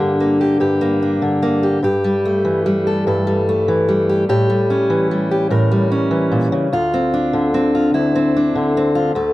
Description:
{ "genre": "folk", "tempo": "49 BPM (dotted quarters)", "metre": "6/8", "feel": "straight", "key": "D minor", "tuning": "A4 = 440 Hz", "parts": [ { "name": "fingerpicked steel-string acoustic guitar", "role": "solo", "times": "0.0-9.3 s", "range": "D2 to Bb4", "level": "-14 LUFS", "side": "equal", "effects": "none" } ], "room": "light reverb", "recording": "dry, close 1970s-style studio recording", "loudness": "-14 LUFS", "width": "side -16 dB against mid", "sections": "0.0-9.2 A section", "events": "none", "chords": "0.0 Gm; 1.8 Emadd11/G; 4.3 A7; 6.7 Dm7", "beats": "0.60 | 1.82 3.05 | 4.27 5.49 | 6.71 7.93 | 9.16" }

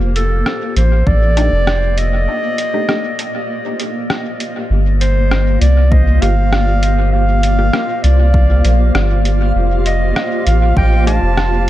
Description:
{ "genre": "ambient dub", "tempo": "99 BPM", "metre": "4/4", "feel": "straight", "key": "unclear", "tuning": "A4 = 441 Hz", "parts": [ { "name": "granular cloud pad", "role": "sustained chords", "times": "0.0-11.7 s", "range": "Bb3 to F5", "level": "-22 LUFS", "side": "equal", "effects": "built-in reverb" }, { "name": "soft dub sub bass", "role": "bass", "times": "0.0-11.7 s", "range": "F1 to C2", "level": "-13 LUFS", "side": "equal", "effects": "none" }, { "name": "warm clarinet", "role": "melody", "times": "0.2-11.7 s", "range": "A4 to A5", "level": "-20 LUFS", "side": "equal", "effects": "vintage 12-bit sampler grit, dub echo" }, { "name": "lo-fi sampler-style drum kit", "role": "drums", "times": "0.2-11.5 s", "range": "hi-hat, rim click", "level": "-22 LUFS", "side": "equal", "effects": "studio reverb, dub echo" }, { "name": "electronic kick drum", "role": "drums", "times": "1.1-1.2, 5.9-10.9 s", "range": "none", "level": "-16 LUFS", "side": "equal", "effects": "overdrive, studio reverb" }, { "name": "filtered dub chord stab", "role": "stabs", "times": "1.4-11.2 s", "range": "A3 to G4", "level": "-27 LUFS", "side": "equal", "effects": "phaser, cassette tape, dub echo" }, { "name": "backwards swelling texture", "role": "texture", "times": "5.6-11.7 s", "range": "F4 to F5", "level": "-28 LUFS", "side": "right 2 dB", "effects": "built-in reverb" } ], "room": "digital ambience", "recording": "none", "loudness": "-12 LUFS", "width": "side -14 dB against mid", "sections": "0.0-11.7 A section", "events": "break 2.3-4.7", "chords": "0.0 F9; 4.7 Gm7; 9.6 F9", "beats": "0.46 1.07 1.68 | 2.28 2.89 3.49 4.10 | 4.71 5.31 5.92 6.52 | 7.13 7.74 8.34 8.95 | 9.55 10.16 10.77 11.37" }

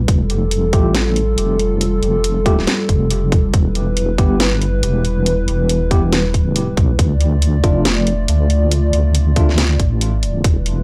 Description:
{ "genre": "deep dubstep", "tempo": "139 BPM", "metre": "4/4", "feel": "swing 60% on 16ths, half-time", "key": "unclear", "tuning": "A4 = 440 Hz", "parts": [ { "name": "dark analog pad", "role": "sustained chords", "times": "0.0-10.8 s", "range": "G3 to D5", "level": "-23 LUFS", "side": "equal", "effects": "chorus" }, { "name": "deep soft wobble bass", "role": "bass", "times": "0.0-10.8 s", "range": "E1 to D2", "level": "-19 LUFS", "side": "equal", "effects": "chorus" }, { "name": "electronic kick drum", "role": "drums", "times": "0.1-10.5 s", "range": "none", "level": "-18 LUFS", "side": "equal", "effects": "small room ambience" }, { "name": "garage drum kit", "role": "drums", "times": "0.1-10.8 s", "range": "hi-hat, snare drum", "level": "-23 LUFS", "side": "equal", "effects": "small room ambience" }, { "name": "tine electric piano", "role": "stabs", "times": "0.7-9.6 s", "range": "A3 to G4", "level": "-27 LUFS", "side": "equal", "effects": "medium tremolo, dub echo" } ], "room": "little or no reverb", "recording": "dry, gritty hardware recording", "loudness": "-16 LUFS", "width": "mono", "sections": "0.0-10.8 A section", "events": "break 10.0-10.4", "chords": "0.1 Fadd9; 3.5 Em; 7.0 Dm", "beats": "| 0.08 0.52 0.95 1.38 | 1.81 2.24 2.67 3.10 | 3.54 3.97 4.40 4.83 | 5.26 5.70 6.13 6.56 | 6.99 7.42 7.85 8.29 | 8.72 9.15 9.58 10.01 | 10.44" }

